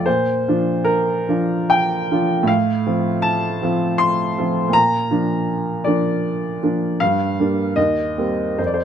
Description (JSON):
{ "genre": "classical, romantic character piece for solo piano", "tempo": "66-82 BPM", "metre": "3/4", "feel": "rubato", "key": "Bb major", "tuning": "A4 = 436 Hz", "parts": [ { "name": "warm baby grand piano", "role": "solo", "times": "0.0-8.8 s", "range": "Eb2 to C6", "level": "-17 LUFS", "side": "equal", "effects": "none" } ], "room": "light reverb", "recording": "close, detailed microphones", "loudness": "-17 LUFS", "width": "side -8 dB against mid", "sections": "0.0-8.8 A section", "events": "none", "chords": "0.1 Bb; 2.5 F/A; 4.7 Bb; 7.0 Gm7; 7.8 Cm7/Eb", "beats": "| 0.06 0.84 1.71 | 2.48 3.25 4.00 | 4.73 5.48 6.25 | 7.01 7.77 8.59" }